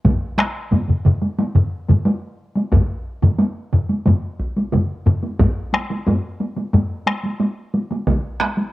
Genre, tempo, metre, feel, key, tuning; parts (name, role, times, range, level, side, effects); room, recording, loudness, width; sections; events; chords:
japanese traditional, taiko drum ensemble; 90 BPM; 4/4; straight
solo taiko drums; percussion; 0.0-8.2 s; -22 LUFS; equal
taiko ensemble; percussion; 0.0-8.7 s; -20 LUFS; right 1 dB
taiko ensemble; percussion; 0.0-8.6 s; -22 LUFS; right 3 dB
taiko ensemble; percussion; 0.1-7.2 s; -18 LUFS; left 1 dB
light reverb, small room ambience; home recording on cassette; -17 LUFS; side -16 dB against mid
0.0-5.4 A section; 5.4-8.7 B section